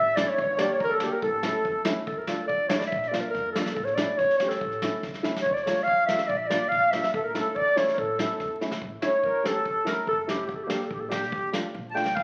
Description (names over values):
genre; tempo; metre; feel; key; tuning
klezmer; 143 BPM; 2/4; straight; A phrygian dominant; A4 = 439 Hz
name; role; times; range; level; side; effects
mellow clarinet; melody; 0.0-12.2 s; G4 to G5; -28 LUFS; equal; none
accordion; second line; 0.0-1.8, 5.4-12.2 s; G4 to A5; -32 LUFS; equal; light tremolo tuning
upright bass; bass; 0.0-12.2 s; F#1 to F2; -46 LUFS; equal; none
warm upright piano; accompaniment; 0.2-12.1 s; A3 to G4; -35 LUFS; equal; none
vintage brush drum kit; drums; 0.2-12.2 s; kick drum, snare drum; -36 LUFS; equal; none
room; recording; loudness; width
wet large studio reverb, RT60 1.2 s; very old 78 rpm record, vinyl crackle; -26 LUFS; mono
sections
0.0-2.1 A section; 2.1-8.8 B section; 8.8-12.2 C section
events
drum fill 5.0-5.5, 8.6, 12.0; clarinet solo 8.8-12.2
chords
0.4 Gm; 1.2 A; 2.1 Dm; 2.9 Bb; 3.8 A; 5.5 Dm; 6.3 Bb; 7.1 A; 10.5 Gm; 11.3 Dm